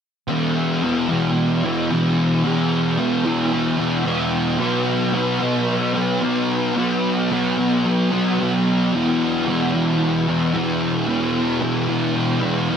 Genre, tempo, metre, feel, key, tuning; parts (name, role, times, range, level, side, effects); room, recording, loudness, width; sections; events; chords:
rock; 111 BPM; 4/4; straight; A4 = 439 Hz
thick fuzz guitar; solo; 0.3-12.8 s; E2 to B3; -17 LUFS; equal; distortion, ensemble chorus, digital delay
light reverb, digital ambience; -18 LUFS; side -7 dB against mid
0.3-12.8 A section
0.3 E5; 4.6 B5; 8.9 E5